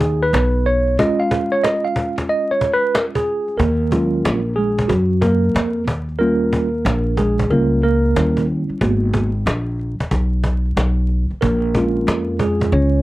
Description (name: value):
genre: hip hop, jazz-hop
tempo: 92 BPM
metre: 4/4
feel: swing 64% on 16ths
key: Eb minor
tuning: A4 = 439 Hz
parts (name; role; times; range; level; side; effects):
- tine electric piano; accompaniment; 0.0-13.0 s; Gb3 to F5; -18 LUFS; right 1 dB; medium stereo tremolo
- upright bass; bass; 0.0-13.0 s; Ab1 to Gb2; -19 LUFS; equal; none
- cajon; drums; 0.0-12.8 s; none; -23 LUFS; equal; none
room: little or no reverb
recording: dry, close 1970s-style studio recording, vinyl crackle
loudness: -16 LUFS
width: side -17 dB against mid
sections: 0.0-3.6 A section; 3.6-13.0 B section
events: tine electric piano solo 0.0-3.6, 3.6-13.0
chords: 0.0 Abm; 1.0 Dbadd9/Ab; 3.6 Ebm11; 5.9 Eb7; 8.2 Eb7b9; 8.8 Abm7; 11.4 Bbm7